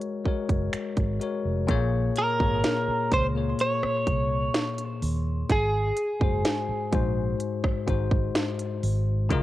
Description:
contemporary R&B; 63 BPM; 4/4; straight; A4 = 441 Hz
bell-like tine electric piano; accompaniment; 0.0-9.4 s; Ab2 to Db5; -29 LUFS; left 5 dB; cassette tape
trap drum kit; drums; 0.0-9.4 s; finger snaps, hi-hat, kick drum, rim click, snare drum; -27 LUFS; right 1 dB; cassette tape
vintage muted fingered electric bass; bass; 0.3-9.4 s; F1 to Eb2; -28 LUFS; right 1 dB
direct-recorded clean electric guitar; melody; 2.2-7.4 s; Ab4 to Db5; -27 LUFS; right 1 dB; cassette tape, analog delay
digital ambience; home recording on cassette; -24 LUFS; side -15 dB against mid
0.0-1.7 A section; 1.7-9.4 B section
0.0 Ab9sus4; 1.7 Bbm7; 5.5 Ab7

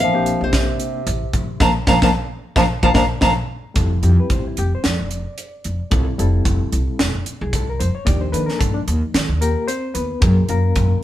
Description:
electric jazz fusion; 111 BPM; 4/4; swing 55% on 16ths; F major; A4 = 440 Hz
nylon-string guitar; melody; 0.0-3.3 s; C5 to Bb5; -20 LUFS; left 1 dB
warm bass clarinet; second line; 0.0-3.3 s; C3 to F3; -23 LUFS; right 3 dB
barky reed electric piano; accompaniment; 0.0-11.0 s; F3 to F5; -24 LUFS; left 4 dB; fast tremolo
upright bass; bass; 0.0-10.9 s; E1 to Eb3; -20 LUFS; equal
crisp fusion drum kit; drums; 0.3-10.9 s; hi-hat, kick drum, snare drum; -20 LUFS; equal
moderate studio reverb, RT60 0.9 s; band playing live in one room; -16 LUFS; side -13 dB against mid
0.0-3.8 A section; 3.8-11.0 B section
band accent 1.6-3.8
0.0 Bbadd9; 3.8 Fmaj9; 8.1 Ebmaj9; 10.2 Gbmaj9

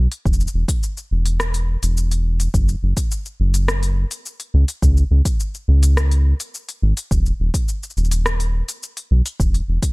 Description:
folktronica; 105 BPM; 4/4; straight; A4 = 440 Hz
round analog bass; bass; 0.0-9.8 s; D#1 to C#2; -16 LUFS; equal
organic electronic drum kit; drums; 0.1-9.9 s; cabasa, hi-hat, rim click; -26 LUFS; left 1 dB
electronic kick drum; drums; 0.3-9.9 s; -20 LUFS; equal
digital ambience; -17 LUFS; side -27 dB against mid
0.0-9.9 A section

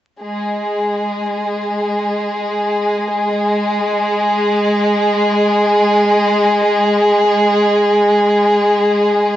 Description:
trip hop; free time; A4 = 440 Hz
rich chamber violin section; sustained chords; 0.2-9.4 s; G#3 to G#4; -13 LUFS; equal
light reverb, small room ambience; dry, gritty hardware recording, vinyl crackle, nothing above 8.0 kHz; -13 LUFS; side -13 dB against mid
0.2-9.4 A section

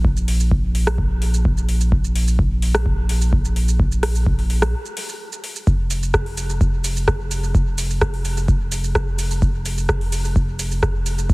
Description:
dub techno; 128 BPM; 4/4; straight; A4 = 440 Hz
soft dub sub bass; bass; 0.0-11.3 s; F1 to Bb1; -20 LUFS; equal; sidechain pumping
electronic kick drum; drums; 0.0-11.3 s; -20 LUFS; equal; overdrive
deep house drum kit; drums; 0.2-11.3 s; hi-hat, rim click, shaker; -25 LUFS; equal; overdrive
digital ambience; heavily compressed radio sound, multiband compression; -17 LUFS; side -24 dB against mid
0.0-5.7 A section; 5.7-11.3 A section
break 4.7-5.7

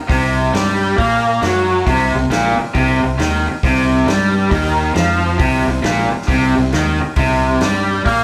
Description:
blues rock power trio and southern rock; 135 BPM; 4/4; swing 65% on 8ths; C minor; A4 = 437 Hz
raw garage guitar; riff; 0.1-8.2 s; Bb2 to Bb3; -17 LUFS; equal; overdrive, spring reverb
fuzz fingered electric bass; bass; 0.1-8.2 s; Bb1 to Bb2; -22 LUFS; equal; overdrive
vintage drum kit; drums; 0.1-8.2 s; hi-hat, kick drum, snare drum; -24 LUFS; equal
moderate large studio reverb, RT60 1.3 s; band playing live in one room; -15 LUFS; mono
0.0-8.2 A section
0.0 Cm

